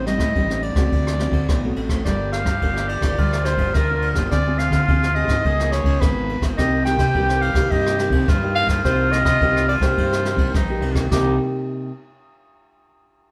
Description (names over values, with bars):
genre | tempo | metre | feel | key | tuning
samba and choro | 106 BPM | 4/4 | straight | C minor | A4 = 440 Hz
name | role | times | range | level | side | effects
breathy clarinet | melody | 0.0-11.4 s | G4 to G5 | -26 LUFS | equal | none
nylon-string guitar | accompaniment | 0.0-11.9 s | G2 to Bb4 | -28 LUFS | equal | none
fuzz fingered electric bass | bass | 0.0-11.4 s | G1 to D3 | -25 LUFS | equal | overdrive
jazz brush drum kit | drums | 0.1-11.2 s | kick drum, ride cymbal, rim click, snare drum | -25 LUFS | equal | none
warm oboe | second line | 2.1-11.4 s | Eb4 to Ab4 | -27 LUFS | equal | none
room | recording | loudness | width
moderate studio reverb, RT60 0.7 s | band playing live in one room | -20 LUFS | mono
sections
0.0-11.1 A section; 11.1-13.3 B section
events
none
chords
0.0 Am7b5; 0.9 D7; 2.1 Gm7; 4.3 Dm7b5; 5.5 Db6; 6.6 Cm7